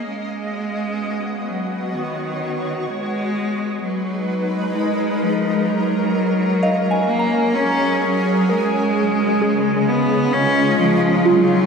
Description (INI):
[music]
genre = ambient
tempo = 64 BPM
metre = 3/4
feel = straight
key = unclear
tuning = A4 = 441 Hz
[part]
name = rich cello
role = melody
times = 0.0-11.7 s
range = D#3 to C#4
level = -20 LUFS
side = equal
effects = none
[part]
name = shimmering ambient pad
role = sustained chords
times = 0.0-11.7 s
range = C#3 to E#5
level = -21 LUFS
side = equal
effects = chorus, built-in reverb
[part]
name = soft synth bell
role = arpeggios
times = 6.6-11.7 s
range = E#4 to A#5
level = -22 LUFS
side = right 2 dB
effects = chorus, phaser, analog delay
[sound]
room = wet lush hall reverb, RT60 3.2 s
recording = dreamy mix soaked in reverb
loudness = -17 LUFS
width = side -5 dB against mid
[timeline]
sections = 0.0-11.7 A section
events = fade-in on ambient pad 0.0-11.7; fade-in on cello 0.0-11.7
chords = 0.1 B; 2.9 G#m7; 5.7 F#maj7; 8.5 C#